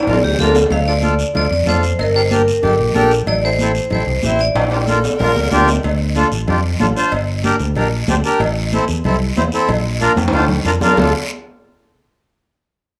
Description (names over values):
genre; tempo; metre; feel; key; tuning
latin, cumbia; 187 BPM; 4/4; straight; D minor; A4 = 436 Hz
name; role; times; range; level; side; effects
vibraphone with hard mallets; melody; 0.0-5.5 s; G4 to F5; -20 LUFS; equal; plate reverb, tape echo
timbales and cowbell; percussion; 0.0-11.1 s; none; -25 LUFS; equal; none
accordion; accompaniment; 0.1-11.1 s; C4 to C5; -21 LUFS; equal; plate reverb
fingered electric bass; bass; 0.1-11.1 s; G1 to F2; -21 LUFS; equal; none
congas; percussion; 0.1-11.0 s; none; -26 LUFS; equal; none
guiro; percussion; 0.1-11.0 s; none; -32 LUFS; equal; none
edgy tenor saxophone; second line; 2.6-5.8, 11.0-11.1 s; G4 to Bb4; -24 LUFS; equal; none
room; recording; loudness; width
wet small room reverb, RT60 0.5 s; rough home demo mix, small room ambience; -16 LUFS; mono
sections
0.0-5.8 A section; 5.8-11.0 B section; 11.0-12.3 C section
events
drum fill 0.0-0.7, 4.6-5.8, 10.0-11.0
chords
0.0 Bb; 0.7 Dm; 2.0 Gm; 3.3 Am; 4.6 Bb; 5.8 Dm; 7.1 Gm; 8.4 Am; 9.7 Bb; 11.0 Dm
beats
0.07 0.40 | 0.71 1.04 1.36 1.68 | 2.00 2.32 2.64 2.96 | 3.28 3.60 3.92 4.24 | 4.56 4.88 5.20 5.52 | 5.84 6.16 6.48 6.80 | 7.13 7.45 7.77 8.09 | 8.41 8.73 9.05 9.37 | 9.69 10.01 10.33 10.65 | 10.97